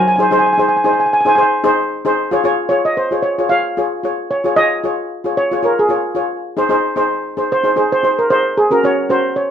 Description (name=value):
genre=calypso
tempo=113 BPM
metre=4/4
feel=swing 54% on 16ths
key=Db major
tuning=A4 = 442 Hz
part: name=steel pan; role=melody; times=0.0-9.4 s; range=Ab4 to Ab5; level=-14 LUFS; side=right 1 dB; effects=none
part: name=steel pan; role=accompaniment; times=0.0-9.4 s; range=Db4 to Eb5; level=-16 LUFS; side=left 2 dB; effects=none
room=light reverb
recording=close, detailed microphones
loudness=-13 LUFS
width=side -8 dB against mid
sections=0.0-2.2 A section; 2.2-9.5 B section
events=steel pan solo 2.2-9.5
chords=0.1 Ab; 2.2 Db; 6.4 Ab; 8.6 Gb